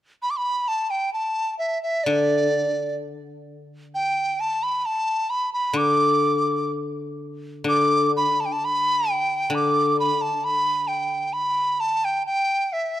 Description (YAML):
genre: chinese traditional, Chinese chamber ensemble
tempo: 65 BPM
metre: 2/4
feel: rubato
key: D zhi mode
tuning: A4 = 440 Hz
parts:
  - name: mellow hollow dizi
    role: melody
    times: 0.2-13.0 s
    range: D5 to D6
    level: -21 LUFS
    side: right 1 dB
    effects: none
  - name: guzheng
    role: accompaniment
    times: 2.1-12.2 s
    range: D3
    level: -25 LUFS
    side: left 4 dB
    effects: none
room: light reverb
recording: close, detailed microphones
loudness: -20 LUFS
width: side -13 dB against mid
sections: 0.2-13.0 A section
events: none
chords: none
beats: | 0.22 1.16 | 2.07 2.98 | 3.90 4.83 | 5.76 6.71 | 7.66 8.61 | 9.52 10.43 | 11.34 12.25